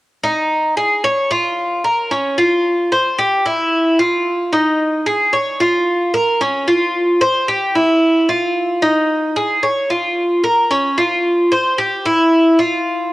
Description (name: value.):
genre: latin.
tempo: 112 BPM.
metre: 4/4.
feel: straight.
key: unclear.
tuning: A4 = 440 Hz.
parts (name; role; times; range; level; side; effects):
Cuban tres; solo; 0.2-13.1 s; Db4 to Db5; -13 LUFS; equal; none.
room: light reverb.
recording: home recording on cassette.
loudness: -13 LUFS.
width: side -18 dB against mid.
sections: 0.0-13.1 A section.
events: none.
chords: none.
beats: 0.50 1.04 1.57 | 2.11 2.65 3.19 3.72 | 4.26 4.80 5.33 5.87 | 6.41 6.95 7.48 8.02 | 8.56 9.10 9.63 10.17 | 10.71 11.25 11.79 12.32 | 12.86.